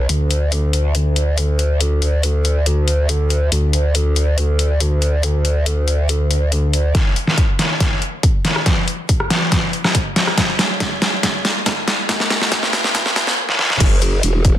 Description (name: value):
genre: heavy wobble dubstep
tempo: 140 BPM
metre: 4/4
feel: half-time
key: unclear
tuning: A4 = 438 Hz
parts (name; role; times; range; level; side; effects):
- growl bass; bass; 0.0-6.9, 13.8-14.6 s; E1 to D2; -15 LUFS; equal; distortion, chorus, overdrive
- dubstep drum kit; drums; 0.1-14.5 s; crash cymbal, hi-hat, rim click, snare drum; -17 LUFS; equal; none
- electronic kick drum; drums; 6.9-14.5 s; none; -17 LUFS; equal; none
room: light reverb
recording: dense, heavily limited modern master, high-pass filter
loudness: -15 LUFS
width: side -12 dB against mid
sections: 0.0-6.9 A section; 6.9-13.8 B section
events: build-up 6.9-13.8; drum fill 6.9-13.4, 13.5-13.8; filter sweep 6.9-13.8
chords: none